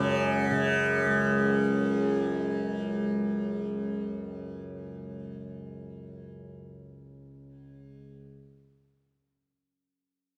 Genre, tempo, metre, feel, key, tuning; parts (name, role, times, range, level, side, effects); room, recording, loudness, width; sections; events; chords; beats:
indian classical; 117 BPM; 4/4; straight; A4 = 437 Hz
sitar; melody; 0.0-2.9 s; C#4; -39 LUFS; equal
tanpura; drone; 0.0-8.2 s; C#2 to C#3; -31 LUFS; equal
light reverb; recorded outdoors, with no room sound; -28 LUFS; mono
0.0-1.5 A section
0.43 0.95